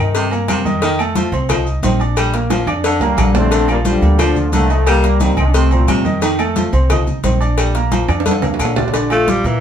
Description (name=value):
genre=latin, salsa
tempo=178 BPM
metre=4/4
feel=straight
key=Bb major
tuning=A4 = 440 Hz
part: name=brilliant trombone section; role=melody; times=0.0-0.3, 3.0-6.1 s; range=C3 to D4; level=-19 LUFS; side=left 2 dB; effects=none
part: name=clear grand piano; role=accompaniment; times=0.0-9.6 s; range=Bb2 to Eb6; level=-21 LUFS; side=right 2 dB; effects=none
part: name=upright bass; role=bass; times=0.0-9.6 s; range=Bb1 to Bb2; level=-17 LUFS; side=equal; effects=none
part: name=cowbell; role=percussion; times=0.1-9.4 s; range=none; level=-23 LUFS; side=left 6 dB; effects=none
part: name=clear baritone saxophone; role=second line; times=0.2-8.8 s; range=C3 to G3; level=-21 LUFS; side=left 1 dB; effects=none
part: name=congas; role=percussion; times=0.2-9.6 s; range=none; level=-22 LUFS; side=left 1 dB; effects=none
part: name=maracas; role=percussion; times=0.2-9.6 s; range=none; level=-32 LUFS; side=left 4 dB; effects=none
part: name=agogo bells and timbales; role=percussion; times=0.3-9.6 s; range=none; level=-24 LUFS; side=right 4 dB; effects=none
part: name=claves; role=percussion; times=0.5-9.3 s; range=none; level=-29 LUFS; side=left 4 dB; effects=none
part: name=raspy tenor saxophone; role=melody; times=9.1-9.6 s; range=E3 to A3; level=-15 LUFS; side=left 1 dB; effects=none
room=moderate studio ambience, RT60 0.5 s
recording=heard from further back in the room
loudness=-13 LUFS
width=side -9 dB against mid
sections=0.0-8.9 A section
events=drum fill 2.5-3.5, 8.1-8.9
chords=0.0 Cm7; 0.8 F7; 2.2 Bb; 4.9 Cm7; 6.2 F7; 7.6 Bb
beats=0.15 0.49 | 0.82 1.16 1.50 1.83 | 2.17 2.51 2.85 3.18 | 3.52 3.86 4.19 4.53 | 4.87 5.21 5.54 5.88 | 6.22 6.56 6.90 7.24 | 7.58 7.92 8.26 8.60 | 8.94 9.28